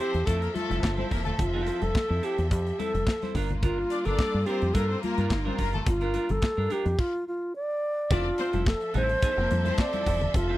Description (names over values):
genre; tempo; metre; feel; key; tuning
disco; 107 BPM; 4/4; straight; F major; A4 = 440 Hz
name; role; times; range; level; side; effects
bright reedy wooden-headed alto flute; melody; 0.0-10.6 s; F4 to D5; -29 LUFS; equal; none
clear studio string section; second line; 0.0-10.0 s; A3 to D5; -34 LUFS; left 3 dB; none
clean electric guitar; accompaniment; 0.0-10.6 s; C4 to C5; -37 LUFS; right 6 dB; spring reverb
clear studio string section; sustained chords; 0.0-10.6 s; F3 to E5; -37 LUFS; equal; none
deep dub fingered electric bass; bass; 0.1-10.5 s; E1 to G2; -28 LUFS; equal; none
modern studio drum kit; drums; 0.1-10.5 s; crash cymbal, handclaps, hi-hat, kick drum, snare drum; -27 LUFS; equal; none
congas; percussion; 0.6-10.5 s; none; -36 LUFS; left 4 dB; none
room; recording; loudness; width
little or no reverb; dry, close 1970s-style studio recording; -24 LUFS; side -16 dB against mid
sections
0.0-8.1 A section; 8.1-10.6 B section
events
stop 7.0-8.1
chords
0.0 Fmaj7; 3.4 Gm7; 8.1 Fmaj7